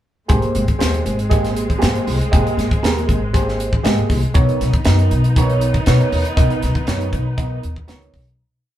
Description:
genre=electric jazz fusion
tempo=119 BPM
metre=4/4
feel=straight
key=unclear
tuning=A4 = 443 Hz
part: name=overdriven reed electric piano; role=accompaniment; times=0.3-8.3 s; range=Bb3 to Eb5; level=-22 LUFS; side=right 2 dB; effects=phaser
part: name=dark chamber string section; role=sustained chords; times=0.3-8.4 s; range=Ab3 to D#4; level=-27 LUFS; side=right 1 dB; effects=none
part: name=upright bass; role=bass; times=0.3-8.4 s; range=Ab1 to B2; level=-18 LUFS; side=left 1 dB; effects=none
part: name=crisp fusion drum kit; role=drums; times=0.3-8.4 s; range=hi-hat, kick drum, snare drum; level=-19 LUFS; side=equal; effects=none
room=moderate studio reverb, RT60 0.6 s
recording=band playing live in one room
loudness=-15 LUFS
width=side -12 dB against mid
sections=0.3-8.4 groove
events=fade-out 6.4-8.4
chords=0.3 Abmaj9; 4.3 Bmaj9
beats=| 0.29 0.80 1.31 1.82 | 2.32 2.83 3.34 3.84 | 4.35 4.85 5.36 5.87 | 6.37 6.88 7.38 7.89

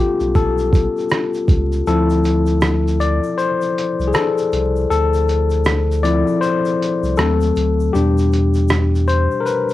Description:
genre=lo-fi hip hop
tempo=79 BPM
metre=4/4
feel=swing 61% on 16ths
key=D dorian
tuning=A4 = 440 Hz
part: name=tine electric piano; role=accompaniment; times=0.0-9.7 s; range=B2 to D5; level=-17 LUFS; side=left 4 dB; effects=medium stereo tremolo, cassette tape
part: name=warm sub bass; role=bass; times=0.2-9.3 s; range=B1 to E2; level=-18 LUFS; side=equal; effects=none
part: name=lo-fi sampler-style drum kit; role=drums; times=0.2-9.7 s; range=hi-hat, kick drum, rim click, shaker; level=-19 LUFS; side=right 1 dB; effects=overdrive, vintage 12-bit sampler grit, cassette tape
part: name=egg shaker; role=percussion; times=0.2-9.7 s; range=none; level=-48 LUFS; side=right 10 dB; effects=none
room=moderate studio ambience, RT60 0.5 s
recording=home recording on cassette, vinyl crackle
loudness=-15 LUFS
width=side -15 dB against mid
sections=0.0-1.9 A section; 1.9-9.7 B section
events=tine electric piano solo 0.0-1.9, 1.9-9.7; kick muted 1.9-9.7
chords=0.0 A7; 1.9 Dm7; 7.2 D#dim7; 7.9 Em7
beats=0.35 1.11 | 1.87 2.62 3.38 4.14 | 4.90 5.66 6.42 7.18 | 7.94 8.70 9.46

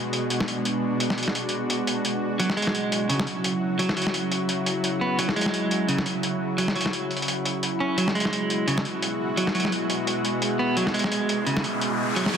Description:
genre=half-time drum and bass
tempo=172 BPM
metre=4/4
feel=swing 57% on 16ths, half-time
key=unclear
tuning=A4 = 440 Hz
part: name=bowed-like drone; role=sustained chords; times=0.0-12.4 s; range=B2 to G#4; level=-26 LUFS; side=equal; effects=built-in reverb
part: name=boom bap sampler-style drum kit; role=drums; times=0.1-12.4 s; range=hi-hat, snare drum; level=-27 LUFS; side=equal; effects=soft clipping on snare
part: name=clean electric guitar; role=arpeggios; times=2.4-12.4 s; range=C#3 to C#4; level=-27 LUFS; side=right 2 dB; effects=vintage 12-bit sampler grit, digital delay
part: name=riser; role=sound effects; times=11.3-12.4 s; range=none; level=-30 LUFS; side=left 1 dB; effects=none
room=wet echo chamber reverb, RT60 1.2 s, digital ambience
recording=dense, heavily limited modern master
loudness=-22 LUFS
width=side -7 dB against mid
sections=0.0-12.4 A section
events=riser 11.3-12.4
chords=0.0 Eadd9 (rootless); 2.4 F#5; 8.0 Eadd9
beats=0.30 0.65 | 1.00 1.35 1.70 2.05 | 2.40 2.75 3.10 3.44 | 3.79 4.14 4.49 4.84 | 5.19 5.54 5.88 6.23 | 6.58 6.93 7.28 7.63 | 7.98 8.33 8.68 9.03 | 9.37 9.72 10.07 10.42 | 10.77 11.12 11.47 11.82 | 12.16

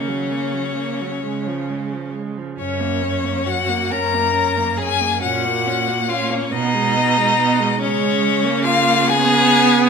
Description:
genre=classical, slow romantic movement for string quartet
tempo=43-48 BPM (dotted quarters)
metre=6/8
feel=rubato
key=F# major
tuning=A4 = 440 Hz
part: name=rich violin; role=melody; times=0.0-9.9 s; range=C#5 to A#5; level=-20 LUFS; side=left 8 dB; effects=none
part: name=rich violin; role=second line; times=0.0-9.9 s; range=C#4 to A#4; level=-22 LUFS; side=left 1 dB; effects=none
part: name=warm viola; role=accompaniment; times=0.0-9.9 s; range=E#3 to C#4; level=-22 LUFS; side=right 5 dB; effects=none
part: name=rich cello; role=bass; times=0.0-9.9 s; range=F#2 to C#3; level=-24 LUFS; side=right 6 dB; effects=none
room=wet recital hall reverb, RT60 1.3 s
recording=minimal, uncompressed stereo recording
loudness=-16 LUFS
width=side -6 dB against mid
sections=0.0-9.9 A section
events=none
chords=0.0 F#/C#; 1.2 C#; 2.6 F#; 5.2 F#/A#; 6.5 G#m/B; 7.8 C#5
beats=1.25 | 2.60 3.92 | 5.23 6.52 | 7.80 9.07

